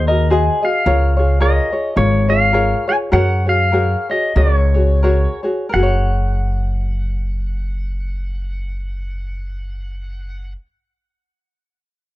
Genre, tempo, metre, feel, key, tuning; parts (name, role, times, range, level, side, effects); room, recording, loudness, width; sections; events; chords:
Hawaiian; 82-110 BPM; 4/4; swing 58% on 8ths; F# major; A4 = 441 Hz
pedal steel guitar; melody; 0.0-10.5 s; G#4 to G#5; -20 LUFS; left 1 dB
tenor ukulele; accompaniment; 0.0-10.7 s; E#4 to D#5; -19 LUFS; left 1 dB
upright bass; bass; 0.0-10.5 s; F#1 to F#2; -17 LUFS; equal
studio ambience; dry, close 1970s-style studio recording; -14 LUFS; side -16 dB against mid
0.0-5.7 A section; 5.7-11.6 B section
slowing down 0.9-5.7
0.0 G#7; 0.9 C#6; 3.1 F#add9